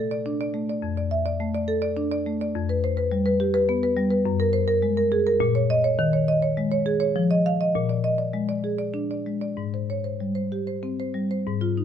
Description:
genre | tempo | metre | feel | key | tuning
classical, contemporary piece for solo marimba | 93-107 BPM | 3/4 | rubato | Ab major from 4.3 s | A4 = 439 Hz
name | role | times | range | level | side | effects
marimba with medium mallets | solo | 0.0-11.8 s | F2 to F5 | -22 LUFS | left 1 dB | none
room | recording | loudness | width
light reverb | close, detailed microphones | -22 LUFS | side -8 dB against mid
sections
0.0-11.5 A section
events
none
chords
0.0 Bbmaj7; 0.8 F6; 2.6 G7/F; 4.3 Gbadd9; 5.4 Bbm; 6.0 Eb7sus4; 7.2 Ebsus2/F; 7.7 Bb7; 9.6 Abmaj7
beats
0.26 | 0.83 1.40 1.98 | 2.56 3.12 3.69 | 4.27 4.84 5.42 | 6.00 6.58 7.16 | 7.75 8.34 8.95 | 9.57 10.20 10.83 | 11.46

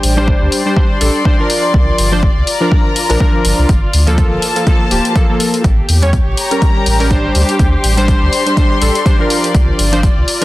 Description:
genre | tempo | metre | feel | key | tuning
deep house | 123 BPM | 4/4 | swing 57% on 16ths | unclear | A4 = 440 Hz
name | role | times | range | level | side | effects
warm analog keys | stabs | 0.0-10.4 s | F3 to C#5 | -17 LUFS | equal | chorus, sidechain pumping, low-pass filter, tape echo
sub bass with octave | bass | 0.0-10.2 s | D1 to E2 | -14 LUFS | equal | none
electronic hi-hat | drums | 0.0-10.4 s | none | -19 LUFS | left 2 dB | overdrive
dark studio string section | texture | 0.0-10.4 s | Bb3 to C6 | -18 LUFS | left 2 dB | sidechain pumping
electronic kick drum | drums | 0.3-10.1 s | none | -13 LUFS | equal | overdrive
room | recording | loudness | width
light reverb, digital ambience | dense, heavily limited modern master, vinyl crackle | -10 LUFS | side -17 dB against mid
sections
0.0-10.4 A section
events
none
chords
0.0 D7sus4; 1.5 C9sus4; 3.7 Gm9; 5.6 A7b9; 7.4 D7sus4; 9.3 C9sus4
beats
0.28 0.77 1.25 | 1.74 2.23 2.72 3.20 | 3.69 4.18 4.67 5.16 | 5.64 6.13 6.62 7.11 | 7.59 8.08 8.57 9.06 | 9.55 10.03

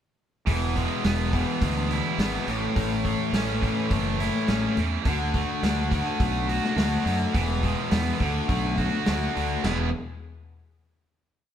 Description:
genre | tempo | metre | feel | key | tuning
classic rock | 105 BPM | 4/4 | straight | E mixolydian | A4 = 440 Hz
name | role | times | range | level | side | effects
sludgy distorted guitar | riff | 0.5-9.9 s | E2 to G#4 | -28 LUFS | left 4 dB | overdrive
tight distorted guitar | riff | 0.5-9.9 s | A2 to F#4 | -29 LUFS | right 6 dB | distortion
fuzz fingered electric bass | bass | 0.5-9.9 s | E1 to F#2 | -28 LUFS | equal | overdrive
vintage drum kit | drums | 0.5-9.8 s | hi-hat, kick drum, snare drum, splash cymbal, toms | -29 LUFS | equal | none
room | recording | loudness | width
moderate stone room reverb, RT60 1.4 s | band playing live in one room | -23 LUFS | side -9 dB against mid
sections
0.5-9.6 verse; 9.6-11.5 final chord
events
none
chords
0.5 E; 2.5 A; 5.0 D; 7.3 E; 8.2 D; 9.6 E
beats
| 0.47 1.04 1.62 2.19 | 2.76 3.33 3.90 4.48 | 5.05 5.62 6.20 6.77 | 7.35 7.92 8.49 9.07 | 9.64

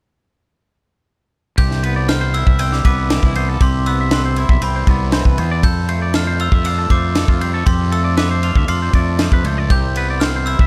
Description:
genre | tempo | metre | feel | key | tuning
math rock and midwest emo | 118 BPM | 4/4 | straight | C major | A4 = 440 Hz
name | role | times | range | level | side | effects
glockenspiel with brass mallets | melody | 1.6-10.7 s | B5 to G6 | -26 LUFS | equal | none
clean electric guitar | accompaniment | 1.6-10.7 s | F2 to F4 | -28 LUFS | equal | none
twangy electric guitar | arpeggios | 1.6-10.7 s | E4 to G5 | -28 LUFS | equal | none
fuzz fingered electric bass | bass | 1.6-10.7 s | B1 to F2 | -21 LUFS | equal | overdrive
crisp fusion drum kit | drums | 1.6-10.7 s | kick drum, ride cymbal, snare drum | -20 LUFS | equal | none
room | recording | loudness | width
little or no reverb | dark, warm production | -16 LUFS | mono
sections
1.6-10.7 A section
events
none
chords
1.6 Cmaj7; 5.6 F6; 9.7 Cmaj7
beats
| 1.58 2.09 2.59 3.10 | 3.61 4.12 4.62 5.13 | 5.64 6.15 6.65 7.16 | 7.67 8.18 8.69 9.20 | 9.71 10.21

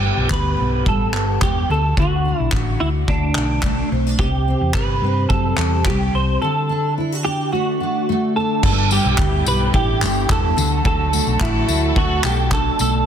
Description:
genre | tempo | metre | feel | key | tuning
acoustic pop | 108 BPM | 4/4 | straight | unclear | A4 = 440 Hz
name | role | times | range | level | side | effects
clean electric guitar | melody | 0.0-13.1 s | D4 to C5 | -22 LUFS | right 2 dB | ensemble chorus
fingerpicked steel-string acoustic guitar | accompaniment | 0.0-13.1 s | G2 to G4 | -22 LUFS | equal | double-tracked left and right
hollow-body short-scale fingered electric bass | bass | 0.0-13.0 s | E1 to G2 | -20 LUFS | equal | none
loose indie drum kit | drums | 0.3-12.9 s | crash cymbal, handclaps, kick drum, tambourine | -22 LUFS | equal | soft clipping on snare
warm studio string section | sustained chords | 8.6-13.0 s | D3 to A4 | -28 LUFS | left 2 dB | none
room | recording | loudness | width
light reverb, small room reverb | dense, heavily limited modern master | -16 LUFS | side -8 dB against mid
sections
0.0-8.6 A section; 8.6-13.1 B section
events
none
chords
0.0 G6; 1.7 D; 4.2 C; 6.4 D; 8.6 G6; 10.6 D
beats
0.31 0.86 1.42 | 1.98 2.53 3.08 3.64 | 4.20 4.75 5.30 5.86 | 6.42 6.97 7.52 8.08 | 8.63 9.19 9.74 10.30 | 10.85 11.40 11.96 12.51

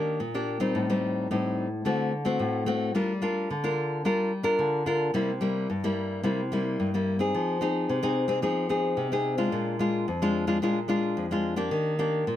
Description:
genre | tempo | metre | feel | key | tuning
samba | 110 BPM | 4/4 | straight | Eb major | A4 = 437 Hz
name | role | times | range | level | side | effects
nylon-string guitar | solo | 0.0-12.4 s | F2 to Bb4 | -25 LUFS | left 1 dB | none
room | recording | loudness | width
moderate studio reverb, RT60 0.6 s | none | -25 LUFS | side -11 dB against mid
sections
0.0-12.4 A section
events
none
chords
0.0 Ebmaj7; 0.8 Am7b5; 1.9 D7; 3.0 Gm7; 5.1 C7; 7.3 Fm7; 9.5 Bb7; 11.7 Ebmaj7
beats
0.21 | 0.76 1.31 1.86 2.41 | 2.96 3.50 4.05 4.60 | 5.15 5.70 6.25 6.79 | 7.34 7.89 8.43 8.98 | 9.53 10.07 10.62 11.17 | 11.71 12.26

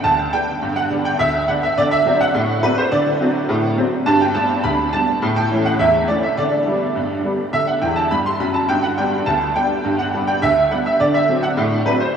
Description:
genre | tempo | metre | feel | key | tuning
ragtime piano | 104 BPM | 2/4 | straight | G major | A4 = 441 Hz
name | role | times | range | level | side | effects
clear upright piano | solo | 0.0-12.1 s | D2 to C6 | -16 LUFS | right 1 dB | ensemble chorus
room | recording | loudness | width
wet huge ambient reverb, RT60 7.6 s | dreamy mix soaked in reverb | -16 LUFS | side -7 dB against mid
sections
0.0-12.2 A section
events
upright piano fill 7.8-8.7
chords
0.0 G; 1.8 D7; 4.1 G; 5.2 A; 6.4 G/D; 7.5 D; 8.7 G; 11.0 D7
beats
0.04 | 0.61 1.19 | 1.77 2.34 | 2.92 3.49 | 4.07 4.64 | 5.21 5.79 | 6.37 6.95 | 7.53 8.11 | 8.69 9.27 | 9.84 10.42 | 10.99 11.57 | 12.14

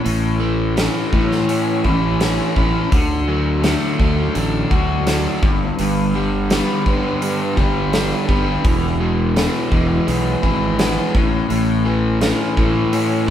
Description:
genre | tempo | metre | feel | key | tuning
classic rock | 84 BPM | 4/4 | straight | unclear | A4 = 444 Hz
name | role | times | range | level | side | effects
overdriven electric guitar | riff | 0.0-13.3 s | E2 to G4 | -21 LUFS | left 5 dB | spring reverb
overdriven electric guitar | riff | 0.0-13.3 s | G2 to C#4 | -23 LUFS | right 5 dB | none
fuzz fingered electric bass | bass | 0.1-13.3 s | E1 to A2 | -21 LUFS | equal | overdrive
gated 80s drum kit | drums | 0.1-13.1 s | hi-hat, kick drum, snare drum | -20 LUFS | equal | none
room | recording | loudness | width
moderate studio reverb, RT60 0.6 s | band playing live in one room | -15 LUFS | side -10 dB against mid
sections
0.0-13.3 A section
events
none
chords
0.0 A; 2.9 D; 5.4 G; 8.6 E; 11.1 A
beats
| 0.06 0.77 1.49 2.21 | 2.92 3.64 4.36 5.07 | 5.79 6.50 7.22 7.93 | 8.65 9.36 10.07 10.79 | 11.50 12.21 12.93

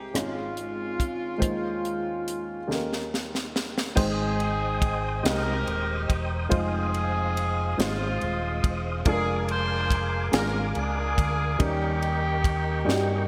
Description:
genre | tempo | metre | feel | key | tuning
slow gospel | 47 BPM (dotted quarters) | 6/8 | straight | Ab major | A4 = 441 Hz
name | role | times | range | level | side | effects
warm horn section | melody | 0.0-13.3 s | Ab3 to G5 | -33 LUFS | equal | delay
dark baby grand piano | accompaniment | 0.0-13.3 s | Ab1 to G5 | -33 LUFS | equal | none
breathy alto saxophone | melody | 0.2-3.1 s | F4 | -36 LUFS | equal | delay
tight funk drum kit | drums | 0.2-13.1 s | crash cymbal, hi-hat, kick drum, ride cymbal, rim click, snare drum | -30 LUFS | equal | gated reverb
tonewheel organ | sustained chords | 4.0-13.3 s | Bb4 to Eb6 | -36 LUFS | equal | slow rotary speaker, chorus vibrato
fingered electric bass | bass | 4.0-13.3 s | Eb1 to G2 | -31 LUFS | equal | none
room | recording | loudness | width
moderate lush hall reverb, RT60 2.6 s | bright 1980s-style digital production | -27 LUFS | mono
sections
0.0-4.0 A section; 4.0-13.3 B section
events
drum fill 2.7-4.0, 12.9-13.3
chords
0.1 Db/Ab; 1.4 Ab/Eb; 2.7 Eb7; 4.0 Abmaj7; 6.5 Fm7; 9.1 Bb7/F; 11.6 Eb7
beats
0.14 | 1.42 2.69 | 3.97 5.24 | 6.51 7.79 | 9.06 10.33 | 11.60 12.87

